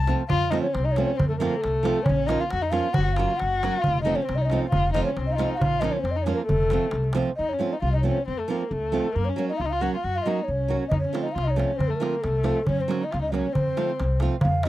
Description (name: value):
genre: balkan folk, Balkan wedding band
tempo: 136 BPM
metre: 2/4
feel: swing 56% on 16ths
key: F phrygian dominant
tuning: A4 = 440 Hz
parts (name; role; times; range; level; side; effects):
- dark violin; second line; 0.0-14.2 s; A3 to Gb4; -32 LUFS; left 8 dB; none
- upright bass; bass; 0.0-14.7 s; F1 to Gb2; -27 LUFS; left 1 dB; none
- nylon-string guitar; accompaniment; 0.1-14.7 s; F3 to Gb4; -27 LUFS; right 5 dB; none
- darbuka; percussion; 0.1-7.3, 10.9-14.7 s; none; -28 LUFS; right 1 dB; none
- breathy mellow ney; melody; 0.3-14.7 s; A4 to Gb5; -27 LUFS; equal; none
room: little or no reverb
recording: dry, close 1970s-style studio recording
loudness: -22 LUFS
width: side -15 dB against mid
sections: 0.3-7.4 A section; 7.4-14.4 B section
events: none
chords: 0.3 F; 2.1 Bbm; 3.0 Gb; 3.8 F; 5.6 Bbm; 6.5 F; 9.1 Gb; 10.9 F; 12.7 Gb; 13.6 F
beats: | 0.30 0.74 | 1.18 1.63 | 2.07 2.51 | 2.96 3.40 | 3.84 4.29 | 4.73 5.17 | 5.61 6.05 | 6.50 6.94 | 7.38 7.82 | 8.27 8.71 | 9.15 9.59 | 10.03 10.47 | 10.91 11.35 | 11.79 12.23 | 12.67 13.11 | 13.55 13.99 | 14.43